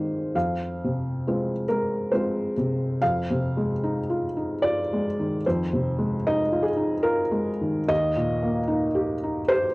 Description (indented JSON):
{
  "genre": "neoclassical minimalist piano",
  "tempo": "62-77 BPM",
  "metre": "3/4",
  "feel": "rubato",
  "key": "F dorian",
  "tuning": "A4 = 440 Hz",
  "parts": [
    { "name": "felt-muted upright piano", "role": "solo", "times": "0.0-9.7 s", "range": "Eb2 to F5", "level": "-22 LUFS", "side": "equal", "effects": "cassette tape" }
  ],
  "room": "small room ambience",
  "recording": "home recording on cassette",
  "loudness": "-22 LUFS",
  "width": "side -23 dB against mid",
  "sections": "0.0-3.0 A section; 3.0-9.7 B section",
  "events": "none",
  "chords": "0.3 Fm; 3.0 Fm7; 7.9 Eb"
}